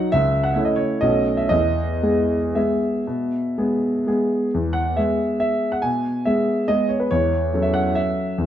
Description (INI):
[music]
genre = classical, piano waltz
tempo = 113-149 BPM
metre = 3/4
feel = rubato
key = E major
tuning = A4 = 440 Hz
[part]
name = warm grand piano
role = solo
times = 0.0-8.5 s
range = B1 to G#5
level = -18 LUFS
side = equal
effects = none
[sound]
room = moderate recital hall reverb, RT60 1.5 s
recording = dark, warm production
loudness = -18 LUFS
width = side -10 dB against mid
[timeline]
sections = 0.0-4.5 A section; 4.5-8.5 A section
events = none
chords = 0.1 A/C#; 1.0 B9; 1.5 E; 7.1 F#m7/E